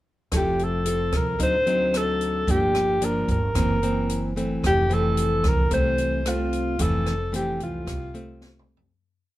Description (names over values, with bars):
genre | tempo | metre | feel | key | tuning
bossa nova | 111 BPM | 4/4 | straight | F major | A4 = 440 Hz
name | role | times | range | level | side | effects
nylon-string guitar | accompaniment | 0.3-8.9 s | F2 to A4 | -27 LUFS | left 1 dB | none
upright bass | bass | 0.3-8.9 s | F1 to D2 | -28 LUFS | right 1 dB | none
open jazz drum kit | drums | 0.3-8.9 s | hi-hat, kick drum, rim click, snare drum, toms | -28 LUFS | equal | none
breathy alto saxophone | melody | 0.4-8.7 s | F4 to C5 | -24 LUFS | equal | none
room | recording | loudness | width
moderate stone room reverb, RT60 1.3 s | band playing live in one room | -21 LUFS | side -15 dB against mid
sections
0.3-8.9 A section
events
fade-out 6.8-8.9; drum fill 8.4-8.9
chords
0.3 Fmaj7; 1.4 D7b9; 2.5 Gm7; 3.6 Gb7#11; 4.6 Fmaj7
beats
| 0.32 0.86 1.40 1.94 | 2.48 3.02 3.56 4.10 | 4.64 5.18 5.71 6.25 | 6.79 7.33 7.87 8.41